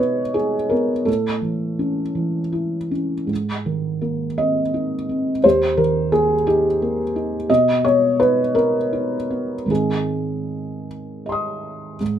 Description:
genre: neoclassical minimalist piano.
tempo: 50-59 BPM (dotted quarters).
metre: 6/8.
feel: rubato.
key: unclear.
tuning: A4 = 444 Hz.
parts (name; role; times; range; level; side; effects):
felt-muted upright piano; solo; 0.0-12.2 s; Eb2 to Eb6; -18 LUFS; equal; none.
room: light reverb.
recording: minimal, uncompressed stereo recording.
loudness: -18 LUFS.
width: side -9 dB against mid.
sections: 0.0-12.0 A section.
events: none.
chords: 0.0 B; 1.1 A; 3.3 Abadd9; 5.4 Eb; 7.5 B; 9.7 Ab.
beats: | 1.08 2.17 | 3.30 4.40 | 5.44 6.46 | 7.49 8.54 | 9.69 10.86 | 12.01.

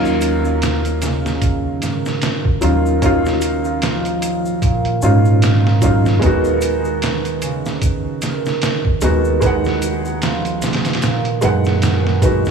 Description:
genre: trip hop.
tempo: 75 BPM.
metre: 4/4.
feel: swing 57% on 16ths.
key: Eb minor.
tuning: A4 = 440 Hz.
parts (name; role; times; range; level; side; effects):
dark upright piano; accompaniment; 0.0-12.5 s; Gb3 to Gb5; -19 LUFS; equal; harmonic tremolo, low-pass filter, tape echo.
concert harp; arpeggios; 0.0-12.5 s; Bb2 to F3; -21 LUFS; right 4 dB; tape echo.
upright bass; bass; 0.0-12.5 s; Bb1 to Ab2; -19 LUFS; right 1 dB; none.
egg shaker; percussion; 0.1-12.5 s; none; -36 LUFS; left 5 dB; none.
trip hop sampler-style drum kit; drums; 0.2-12.5 s; hi-hat, kick drum, snare drum; -20 LUFS; right 1 dB; small room ambience.
room: light reverb, small room ambience.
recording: none.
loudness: -14 LUFS.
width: side -6 dB against mid.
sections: 0.0-12.5 A section.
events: none.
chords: 0.0 Ebm9; 6.2 Abm7/Eb.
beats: 0.62 1.42 2.22 | 3.02 3.82 4.62 5.42 | 6.22 7.02 7.82 8.62 | 9.42 10.22 11.02 11.82.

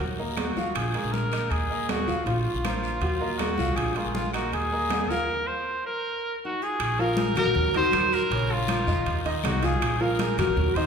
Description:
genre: latin, Cuban son and guajira.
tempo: 159 BPM.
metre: 4/4.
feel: straight.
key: Bb minor.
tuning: A4 = 440 Hz.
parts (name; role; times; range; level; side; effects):
warm trumpet; melody; 0.0-10.9 s; F4 to C5; -28 LUFS; right 1 dB; none.
bright concert grand piano; arpeggios; 0.0-10.9 s; Db3 to Gb5; -29 LUFS; equal; none.
upright bass; bass; 0.0-10.9 s; Bb1 to Eb3; -29 LUFS; equal; none.
congas; percussion; 0.0-10.9 s; none; -34 LUFS; left 1 dB; none.
guiro; percussion; 0.0-10.9 s; none; -41 LUFS; left 6 dB; none.
timbales; percussion; 0.0-10.9 s; none; -34 LUFS; right 4 dB; none.
claves; percussion; 0.4-10.6 s; none; -43 LUFS; left 5 dB; none.
nylon-string guitar; second line; 6.4-10.9 s; Db4 to Gb4; -30 LUFS; left 4 dB; none.
room: wet recital hall reverb, RT60 1.7 s.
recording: recorded in a church or concert hall.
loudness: -23 LUFS.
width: side -6 dB against mid.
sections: 0.0-6.8 A section; 6.8-10.9 B section.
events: stop 5.3-6.8.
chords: 0.0 Ebm; 0.8 Bb5; 1.5 Ebm; 2.3 Bbsus2; 3.0 Ebm; 3.8 Bb5; 4.5 Eb5; 5.3 N.C.; 6.8 Bb5; 7.6 Ebm; 8.3 Bbm; 9.1 Cmadd11; 9.8 Bb5.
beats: 0.00 0.38 | 0.75 1.13 1.51 1.89 | 2.27 2.65 3.02 3.40 | 3.78 4.16 4.54 4.91 | 5.29 5.67 6.05 6.42 | 6.80 7.18 7.56 7.93 | 8.31 8.69 9.06 9.44 | 9.82 10.19 10.57.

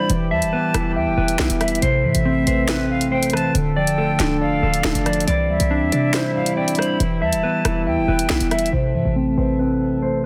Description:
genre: hip hop, drill.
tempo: 139 BPM.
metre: 4/4.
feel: half-time.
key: A minor.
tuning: A4 = 440 Hz.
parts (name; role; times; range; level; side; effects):
silver concert flute; second line; 0.0-8.7 s; E5 to B5; -29 LUFS; equal; tape echo.
mellow tine electric piano; accompaniment; 0.0-10.3 s; C3 to E5; -25 LUFS; equal; phaser, low-pass filter.
warm brass ensemble; sustained chords; 0.0-10.3 s; C3 to B4; -33 LUFS; equal; low-pass filter.
mellow electric guitar; arpeggios; 0.0-10.3 s; C4 to E5; -25 LUFS; equal; low-pass filter, tape echo.
short 808-style bass; bass; 0.0-10.3 s; C1 to C3; -26 LUFS; equal; none.
drill drum kit; drums; 0.1-8.7 s; finger snaps, hi-hat, rim click, snare drum; -26 LUFS; equal; none.
room: light reverb, digital ambience.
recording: dense, heavily limited modern master.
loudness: -19 LUFS.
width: mono.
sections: 0.0-8.7 A section; 8.7-10.3 B section.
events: filter sweep 8.7-10.3.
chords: 0.1 Em; 1.8 Amadd9; 3.5 Dm; 5.3 Cadd9; 7.0 Em; 8.7 Amadd9.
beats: | 0.10 0.53 0.96 1.39 | 1.82 2.25 2.69 3.12 | 3.55 3.98 4.41 4.84 | 5.28 5.71 6.14 6.57 | 7.00 7.43 7.87 8.30 | 8.73 9.16 9.59 10.02.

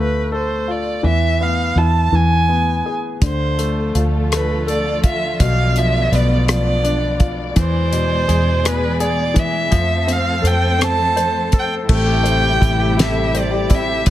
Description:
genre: six-eight pop ballad.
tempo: 55 BPM (dotted quarters).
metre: 6/8.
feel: straight.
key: A minor.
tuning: A4 = 441 Hz.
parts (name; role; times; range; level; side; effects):
warm violin; melody; 0.0-14.1 s; B4 to A5; -20 LUFS; right 2 dB; none.
clear baby grand piano; accompaniment; 0.0-14.1 s; B2 to C5; -22 LUFS; left 4 dB; none.
vintage muted fingered electric bass; bass; 0.0-14.1 s; A1 to F2; -19 LUFS; equal; none.
warm symphonic string section; sustained chords; 3.2-14.1 s; B2 to D5; -25 LUFS; equal; none.
damped 70s drum kit; drums; 3.2-14.1 s; crash cymbal, hi-hat, kick drum, rim click, snare drum; -17 LUFS; equal; none.
fingerpicked steel-string acoustic guitar; arpeggios; 11.9-14.1 s; A2 to A4; -26 LUFS; equal; none.
room: light reverb.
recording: none.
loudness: -15 LUFS.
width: side -13 dB against mid.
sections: 0.0-11.9 A section; 11.9-14.1 B section.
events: none.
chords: 0.0 Dm7; 1.0 E5; 2.1 E; 3.2 Dm; 5.4 Bdim; 7.6 E; 9.7 F; 11.9 Am7.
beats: | 1.04 2.12 | 3.22 4.31 | 5.40 6.48 | 7.56 8.65 | 9.73 10.81 | 11.90 12.99 | 14.07.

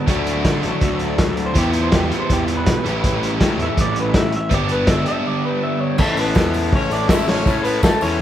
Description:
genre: indie rock.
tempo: 162 BPM.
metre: 4/4.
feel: straight.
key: unclear.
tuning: A4 = 439 Hz.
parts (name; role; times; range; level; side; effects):
biting overdriven guitar; riff; 0.0-6.0 s; G2 to E4; -24 LUFS; right 6 dB; none.
overdriven electric guitar; riff; 0.0-8.2 s; E3 to A4; -24 LUFS; left 6 dB; spring reverb.
fuzz picked electric bass; bass; 0.1-8.2 s; G1 to D3; -23 LUFS; equal; overdrive.
vintage drum kit; drums; 0.1-8.1 s; crash cymbal, hi-hat, kick drum, snare drum; -19 LUFS; equal; none.
electric guitar through a small old amp; melody; 1.5-8.2 s; F4 to E5; -24 LUFS; left 1 dB; none.
brilliant trumpet; second line; 6.0-8.2 s; A3 to E4; -27 LUFS; right 4 dB; none.
tambourine; percussion; 6.0-8.1 s; none; -39 LUFS; right 6 dB; none.
room: light reverb.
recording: band playing live in one room.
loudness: -16 LUFS.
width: side -11 dB against mid.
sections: 0.0-6.0 A section; 6.0-8.2 B section.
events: clean electric guitar solo 0.0-6.0; break 5.3-6.0.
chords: 0.1 D; 1.6 Em; 2.9 A5; 4.5 G; 6.0 A.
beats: | 0.08 0.45 0.82 1.19 | 1.56 1.93 2.30 2.67 | 3.04 3.41 3.78 4.15 | 4.52 4.88 5.25 5.62 | 5.99 6.36 6.73 7.10 | 7.47 7.84 8.21.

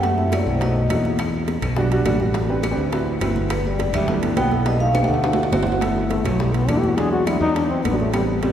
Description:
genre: Afro-Cuban jazz.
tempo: 207 BPM.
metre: 4/4.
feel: straight.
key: E minor.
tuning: A4 = 440 Hz.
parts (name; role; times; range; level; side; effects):
clear trombone; second line; 0.0-1.0, 3.5-8.2 s; D3 to G#4; -25 LUFS; left 3 dB; none.
warm upright piano; accompaniment; 0.0-8.5 s; F#3 to B4; -24 LUFS; right 1 dB; none.
modern bright fingered electric bass; bass; 0.0-8.5 s; G1 to F#2; -22 LUFS; equal; none.
bongos; percussion; 0.0-8.5 s; none; -32 LUFS; left 3 dB; none.
congas; percussion; 0.0-8.5 s; none; -28 LUFS; equal; none.
timbales; percussion; 0.0-8.5 s; none; -30 LUFS; right 3 dB; none.
vibraphone with medium mallets; melody; 0.1-1.0, 3.5-5.6 s; B4 to G5; -25 LUFS; right 1 dB; none.
claves; percussion; 0.3-8.3 s; none; -37 LUFS; left 4 dB; none.
room: wet church reverb, RT60 2.9 s.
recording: recorded in a church or concert hall, lossy compression artefacts.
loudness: -18 LUFS.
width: side -10 dB against mid.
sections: 0.0-5.8 A section; 5.8-8.5 B section.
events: drum fill 5.0-5.8; trombone solo 5.8-8.5.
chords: 0.0 F#m7b5; 0.6 B7; 1.2 Em9; 2.3 Am11; 2.9 D13; 3.5 G69; 4.7 B7alt; 5.2 D7; 5.8 G6; 7.0 E7.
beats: | 0.04 0.32 0.61 0.90 | 1.19 1.48 1.77 2.06 | 2.35 2.63 2.92 3.21 | 3.50 3.79 4.08 4.37 | 4.66 4.95 5.24 5.53 | 5.82 6.11 6.40 6.69 | 6.98 7.27 7.56 7.85 | 8.14 8.43.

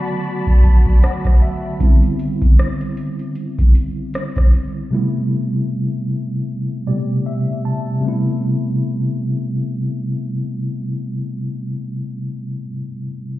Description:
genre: contemporary R&B.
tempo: 77 BPM.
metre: 4/4.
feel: swing 58% on 16ths.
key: A dorian.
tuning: A4 = 440 Hz.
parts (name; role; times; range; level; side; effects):
mellow tine electric piano; accompaniment; 0.0-13.4 s; B2 to A5; -20 LUFS; equal; medium stereo tremolo.
warm studio string section; sustained chords; 0.0-1.8 s; F#4 to B5; -28 LUFS; left 2 dB; sidechain pumping.
booming analog drum machine; drums; 0.1-4.7 s; hi-hat, kick drum, rim click; -11 LUFS; equal; none.
room: light reverb, digital ambience.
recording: heard muffled through a wall, stone room reverb, EQ.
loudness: -16 LUFS.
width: side -16 dB against mid.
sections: 0.0-8.0 A section; 8.0-11.2 B section.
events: tine electric piano fill 0.2-1.8, 6.5-8.0.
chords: 0.0 Bm7; 1.8 Cmaj9; 4.9 Am7.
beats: 0.24 1.02 | 1.80 2.58 3.36 4.14 | 4.92 5.70 6.48 7.26 | 8.04 8.81 9.59 10.37.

